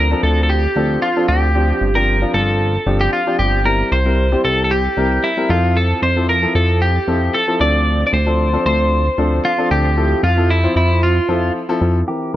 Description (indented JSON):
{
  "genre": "dance-pop",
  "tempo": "114 BPM",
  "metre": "4/4",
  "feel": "straight",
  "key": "F major",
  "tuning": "A4 = 440 Hz",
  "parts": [
    { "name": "twelve-string electric guitar", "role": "melody", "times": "0.0-12.4 s", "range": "E4 to D5", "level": "-18 LUFS", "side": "right 1 dB", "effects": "vibrato effect, digital delay" },
    { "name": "warm baby grand piano", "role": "accompaniment", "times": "0.0-12.4 s", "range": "E3 to C5", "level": "-20 LUFS", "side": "left 2 dB", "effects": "none" },
    { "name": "chorused synth bass", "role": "bass", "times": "0.0-12.4 s", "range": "G1 to F2", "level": "-17 LUFS", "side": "equal", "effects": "none" }
  ],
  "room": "small room ambience",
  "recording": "low-pass filter",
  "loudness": "-14 LUFS",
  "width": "side -13 dB against mid",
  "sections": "0.0-12.1 A section",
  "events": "none",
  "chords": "0.0 Dm7; 1.6 G7sus4; 3.7 C7; 5.5 Fmaj7; 7.6 Dm7; 10.0 Fmaj7"
}